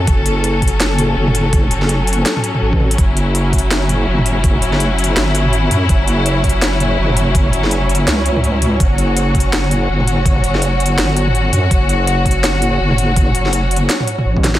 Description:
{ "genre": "half-time drum and bass", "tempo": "165 BPM", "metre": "4/4", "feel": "swing 60% on 16ths, half-time", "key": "F# phrygian", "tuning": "A4 = 440 Hz", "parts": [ { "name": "clear studio string section", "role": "sustained chords", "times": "0.0-14.6 s", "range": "F#3 to A4", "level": "-19 LUFS", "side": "left 3 dB", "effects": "sidechain pumping" }, { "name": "deep soft wobble bass", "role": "bass", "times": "0.0-14.6 s", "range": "F#1 to F#2", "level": "-16 LUFS", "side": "equal", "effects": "chorus" }, { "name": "drum and bass drum kit", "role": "drums", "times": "0.1-14.6 s", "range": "hi-hat, snare drum, toms", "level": "-19 LUFS", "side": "equal", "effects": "studio reverb" }, { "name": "electronic kick drum", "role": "drums", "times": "0.1-14.4 s", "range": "none", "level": "-15 LUFS", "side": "equal", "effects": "studio reverb" }, { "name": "flickering grainy texture", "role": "texture", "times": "3.8-14.6 s", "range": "C#5", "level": "-25 LUFS", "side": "right 3 dB", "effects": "built-in reverb" } ], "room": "digital ambience", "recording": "none", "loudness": "-12 LUFS", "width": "side -14 dB against mid", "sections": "0.0-14.6 A section", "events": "drum fill 14.3", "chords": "0.0 F#5" }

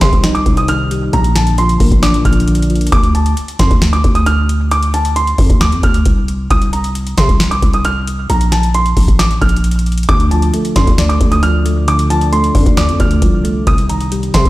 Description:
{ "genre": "hip hop, trap", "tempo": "134 BPM", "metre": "4/4", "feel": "half-time", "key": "D phrygian", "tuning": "A4 = 439 Hz", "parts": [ { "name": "dark baby grand piano", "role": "melody", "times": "0.0-14.5 s", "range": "A5 to F6", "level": "-18 LUFS", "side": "right 1 dB", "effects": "tape echo" }, { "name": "soft electric-piano-like synth keys", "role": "accompaniment", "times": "0.0-2.9, 10.1-14.5 s", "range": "Bb2 to D5", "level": "-17 LUFS", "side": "left 1 dB", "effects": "chorus" }, { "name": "growling 808-style bass", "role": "bass", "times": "0.0-14.5 s", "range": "A1 to C3", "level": "-14 LUFS", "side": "equal", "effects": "none" }, { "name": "booming analog drum machine", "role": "drums", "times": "0.0-14.5 s", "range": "hi-hat, kick drum, snare drum", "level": "-14 LUFS", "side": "equal", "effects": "none" } ], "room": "little or no reverb", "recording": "played on a big sound system in a bare room, stone room reverb", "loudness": "-10 LUFS", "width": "side -17 dB against mid", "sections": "0.0-2.9 A section; 2.9-14.5 A section", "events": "none", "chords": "0.0 Cm; 1.1 Bb; 2.9 Dm; 6.5 N.C.; 8.3 Bb5; 10.1 Dm; 13.7 Cm" }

